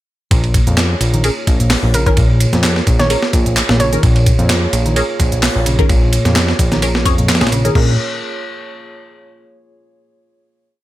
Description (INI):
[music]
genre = breakbeat, breaks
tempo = 129 BPM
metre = 4/4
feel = swing 54% on 16ths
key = Bb minor pentatonic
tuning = A4 = 439 Hz
[part]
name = dark analog pad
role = sustained chords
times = 0.3-8.0 s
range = Bb3 to Db5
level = -24 LUFS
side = right 2 dB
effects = chorus, sidechain pumping
[part]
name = vintage muted picked electric bass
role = riff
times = 0.3-8.0 s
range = Bb2 to Eb3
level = -18 LUFS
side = equal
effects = tube saturation
[part]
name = fat analog bass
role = bass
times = 0.3-8.0 s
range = Bb1 to F2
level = -16 LUFS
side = equal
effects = none
[part]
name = breakbeat sampler-style drum kit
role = drums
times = 0.3-7.9 s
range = crash cymbal, hi-hat, kick drum, ride cymbal, snare drum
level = -16 LUFS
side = equal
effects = none
[part]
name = garage drum kit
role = drums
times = 0.3-7.7 s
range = handclaps, hi-hat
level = -22 LUFS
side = equal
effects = none
[part]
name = filtered dub chord stab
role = stabs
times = 1.2-7.9 s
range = Db4 to Db5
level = -23 LUFS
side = left 2 dB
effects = phaser, analog chorus, tape echo
[part]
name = hollow square pluck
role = melody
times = 1.9-4.5 s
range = Bb4 to Db5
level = -22 LUFS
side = right 1 dB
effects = chorus, small speaker sound, tape echo
[sound]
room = digital ambience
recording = none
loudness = -11 LUFS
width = side -15 dB against mid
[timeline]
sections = 0.3-7.8 drop; 7.8-9.6 final chord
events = drop 0.3-7.8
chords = 0.3 Bbm7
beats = | 0.31 0.78 1.24 1.71 | 2.17 2.64 3.10 3.57 | 4.03 4.50 4.96 5.43 | 5.89 6.36 6.83 7.29 | 7.75